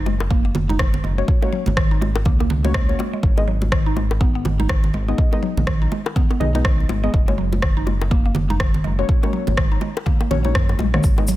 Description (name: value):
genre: afro house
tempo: 123 BPM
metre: 4/4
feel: swing 59% on 16ths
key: unclear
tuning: A4 = 440 Hz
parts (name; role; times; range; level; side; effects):
- mallet-like synth pluck; arpeggios; 0.0-11.4 s; D#3 to D#4; -26 LUFS; right 1 dB; chorus, phaser, sidechain pumping, dub echo
- round analog bass; bass; 0.0-11.4 s; F#1 to F#2; -22 LUFS; equal; sidechain pumping
- bongos; percussion; 0.1-11.3 s; none; -30 LUFS; left 5 dB; none
- electronic kick drum; drums; 0.3-11.2 s; none; -19 LUFS; equal; none
- congas; percussion; 0.5-10.9 s; none; -27 LUFS; right 3 dB; none
- afro-pop drum kit; drums; 0.8-11.0 s; rim click, toms; -26 LUFS; equal; soft clipping on snare
- deep mellow chord stab; stabs; 1.2-11.2 s; A#3 to D#5; -27 LUFS; left 3 dB; chorus, sidechain pumping, dub echo
- tube shaker; percussion; 11.0-11.4 s; none; -30 LUFS; left 2 dB; none
room: studio reverb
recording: dense, heavily limited modern master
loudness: -17 LUFS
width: side -15 dB against mid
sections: 0.0-11.4 A section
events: drum fill 10.8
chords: 0.0 F#; 3.2 G#m; 7.1 F#